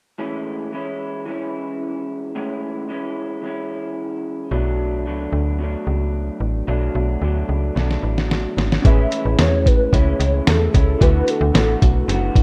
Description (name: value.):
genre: indie pop, bedroom pop.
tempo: 111 BPM.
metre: 4/4.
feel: straight.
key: A major.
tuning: A4 = 439 Hz.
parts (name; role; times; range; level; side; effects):
electric guitar through a small old amp; accompaniment; 0.2-12.4 s; A2 to F#4; -27 LUFS; equal; analog chorus, warbly pitch drift.
slap-like FM bass; bass; 4.5-12.4 s; F#1 to E2; -22 LUFS; equal; none.
lo-fi sampler-style drum kit; drums; 7.8-12.4 s; hi-hat, kick drum, snare drum; -19 LUFS; equal; none.
warm analog keys; accompaniment; 8.8-12.4 s; C#4 to B4; -30 LUFS; equal; chorus, cassette tape.
warbly nostalgic lead; melody; 8.9-12.1 s; A4 to E5; -25 LUFS; equal; ensemble chorus, tape echo.
room: digital ambience.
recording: rough home demo mix.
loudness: -20 LUFS.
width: mono.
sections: 0.2-8.8 A section; 8.8-12.4 B section.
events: drum fill 7.8-8.8.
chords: 0.2 Amaj7; 4.5 Bm7; 8.8 Amaj7; 11.0 D6.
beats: | 0.19 0.73 1.27 1.81 | 2.35 2.90 3.44 3.98 | 4.52 5.06 5.60 6.14 | 6.68 7.22 7.77 8.31 | 8.85 9.39 9.93 10.47 | 11.01 11.55 12.09.